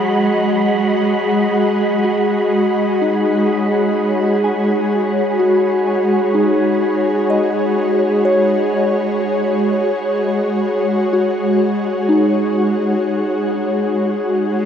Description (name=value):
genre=ambient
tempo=62 BPM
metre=4/4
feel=straight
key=G# minor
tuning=A4 = 438 Hz
part: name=ethereal airy pad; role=sustained chords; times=0.0-14.7 s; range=G#3 to F#5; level=-15 LUFS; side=equal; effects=ensemble chorus, built-in reverb, shimmer reverb
part: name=soft synth bell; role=arpeggios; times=0.0-14.7 s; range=D#4 to G#5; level=-21 LUFS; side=left 1 dB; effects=chorus, phaser, shimmer reverb, diffuse ambient delay
part: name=wind-like tuned noise texture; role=texture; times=0.0-14.7 s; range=B5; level=-30 LUFS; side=right 3 dB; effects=built-in reverb, shimmer reverb
part: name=clear cello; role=melody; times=14.5-14.7 s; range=G#3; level=-31 LUFS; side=left 1 dB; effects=none
room=wet huge ambient reverb, RT60 7.6 s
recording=dreamy mix soaked in reverb, cassette tape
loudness=-14 LUFS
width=side -8 dB against mid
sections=0.0-14.7 A section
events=fade-in on synth bell 0.0-14.7; fade-out on synth texture 0.0-14.7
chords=0.0 G#m7